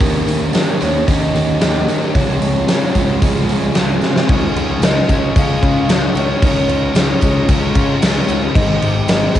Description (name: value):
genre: rock, shoegaze and dream pop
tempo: 112 BPM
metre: 4/4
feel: straight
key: Db lydian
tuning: A4 = 440 Hz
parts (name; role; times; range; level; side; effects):
- hollow clarinet-like synth lead; melody; 0.0-9.4 s; Bb4 to F5; -23 LUFS; equal; chorus, cassette tape, tape echo
- pedal harmonium; sustained chords; 0.0-9.4 s; Ab3 to C6; -27 LUFS; right 2 dB; cassette tape
- electric guitar through a small old amp; arpeggios; 0.0-9.4 s; Eb3 to G4; -25 LUFS; equal; none
- overdriven semi-hollow guitar; riff; 0.0-4.3 s; Db3 to G4; -21 LUFS; right 8 dB; reverse reverb, cassette tape
- thick fuzz guitar; riff; 0.0-9.4 s; Ab2 to Eb4; -20 LUFS; left 6 dB; distortion, analog chorus, cassette tape
- fuzz picked electric bass; bass; 0.0-9.4 s; Ab1 to Eb3; -20 LUFS; equal; overdrive, tube saturation
- huge arena drum kit; drums; 0.0-9.4 s; crash cymbal, hi-hat, kick drum, snare drum; -16 LUFS; equal; none
- tambourine; percussion; 0.0-9.4 s; none; -37 LUFS; right 11 dB; none
room: light reverb, studio reverb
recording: home recording on cassette, nothing above 10.5 kHz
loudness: -13 LUFS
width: side -11 dB against mid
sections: 0.0-4.3 A section; 4.3-9.4 B section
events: drum fill 4.0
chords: 0.0 Eb7; 2.2 Dbmaj7; 4.3 Dbadd9; 8.6 Abmaj7